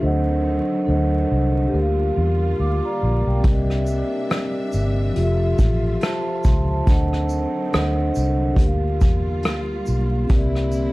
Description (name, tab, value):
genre	lo-fi hip hop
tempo	70 BPM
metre	4/4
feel	swing 57% on 16ths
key	D minor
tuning	A4 = 441 Hz
part	vibraphone with soft mallets	accompaniment	0.0-10.9 s	F3 to D6	-23 LUFS	equal	none
part	clear studio string section	sustained chords	0.0-10.9 s	C3 to E5	-30 LUFS	right 1 dB	none
part	vintage muted fingered electric bass	bass	0.0-10.9 s	F1 to E2	-21 LUFS	equal	none
part	vintage brush drum kit	drums	3.4-10.9 s	hi-hat, kick drum, rim click, shaker	-19 LUFS	equal	none
part	tambourine	percussion	3.9-10.9 s	none	-46 LUFS	right 6 dB	none
room	light reverb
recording	dark, warm production, vinyl crackle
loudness	-18 LUFS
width	side -20 dB against mid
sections	0.0-10.9 A section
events	none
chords	0.0 D7b9; 1.7 Gm7/D; 3.4 C9; 5.2 Fmaj7; 6.9 D7b9; 8.6 Gm7/D; 10.3 C9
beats	| 0.01 0.87 1.73 2.58 | 3.44 4.30 5.16 6.01 | 6.87 7.73 8.59 9.44 | 10.30